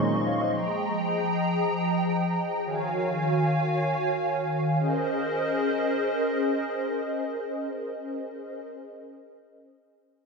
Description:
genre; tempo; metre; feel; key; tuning
amapiano; free time; none; none; unclear; A4 = 439 Hz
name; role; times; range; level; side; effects
dark grand piano; accompaniment; 0.0-0.7 s; Bb2 to F5; -27 LUFS; left 1 dB; none
hollow soft pad; sustained chords; 0.0-8.7 s; Eb3 to Db6; -25 LUFS; equal; ensemble chorus
room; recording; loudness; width
wet lush hall reverb, RT60 1.6 s, studio reverb; dark, warm production; -24 LUFS; side -4 dB against mid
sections
0.0-4.8 A section; 4.8-9.0 B section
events
none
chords
0.0 Bbm11; 0.5 Fm11; 2.7 Ebm11; 4.8 Bbm11

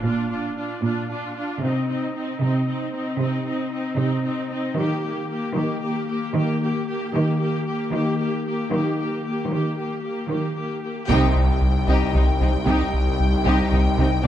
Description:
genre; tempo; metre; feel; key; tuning
cinematic, hybrid orchestral and electronic film score; 76 BPM (dotted quarters); 6/8; straight; unclear; A4 = 440 Hz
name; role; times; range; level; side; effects
clear studio viola section; accompaniment; 0.0-14.1 s; Bb3 to G4; -26 LUFS; left 1 dB; none
rich symphonic cello section; bass; 0.0-14.3 s; Bb2 to Eb3; -25 LUFS; right 2 dB; none
clear symphonic violin section; melody; 11.1-14.2 s; G5; -28 LUFS; left 6 dB; none
clear symphonic violin section; second line; 11.1-14.3 s; C4 to G4; -30 LUFS; left 4 dB; none
dark trombone section; sustained chords; 11.1-14.2 s; G3 to Eb4; -27 LUFS; right 1 dB; none
rubbery square bass; riff; 11.1-14.3 s; C2; -22 LUFS; equal; none
clear symphonic double bass section; bass; 11.1-14.1 s; C2; -26 LUFS; right 1 dB; none
wide detuned saw bass; bass; 11.1-14.3 s; C2; -24 LUFS; left 1 dB; chorus
room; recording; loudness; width
moderate concert hall reverb, RT60 1.9 s; dark, warm production; -20 LUFS; side -11 dB against mid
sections
0.0-11.1 A section; 11.1-14.3 B section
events
band accent 11.1-11.6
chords
0.0 Bb; 1.6 Cm; 4.8 Eb; 11.1 Cm

